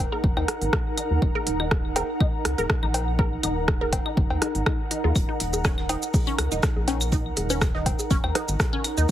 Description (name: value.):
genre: minimal techno.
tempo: 122 BPM.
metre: 4/4.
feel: swing 54% on 16ths.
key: Eb minor.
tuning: A4 = 440 Hz.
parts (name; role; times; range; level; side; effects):
rubbery square bass; bass; 0.0-9.1 s; Eb1 to Eb2; -27 LUFS; equal; sidechain pumping.
ethereal airy pad; texture; 0.0-9.1 s; Eb4 to Bb5; -30 LUFS; right 1 dB; ensemble chorus, built-in reverb, sidechain pumping.
resonant blip pluck; riff; 0.1-9.0 s; Db4 to Bb4; -31 LUFS; left 1 dB; phaser, sidechain pumping, dub echo.
bongos, cowbell and claves; percussion; 0.1-8.9 s; none; -31 LUFS; left 2 dB; ping-pong delay.
electronic kick drum; drums; 0.2-9.1 s; none; -24 LUFS; equal; none.
minimal click drum kit; drums; 0.5-9.1 s; hi-hat, rim click, shaker; -28 LUFS; equal; none.
soft brush drum kit; drums; 5.2-9.1 s; hi-hat, snare drum; -41 LUFS; right 3 dB; high-pass filter on hats, high-pass filter on snare, high-pass filter on room.
room: little or no reverb.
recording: heavily compressed radio sound.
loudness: -22 LUFS.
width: side -12 dB against mid.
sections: 0.0-9.1 A section.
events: none.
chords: 0.0 Ebm.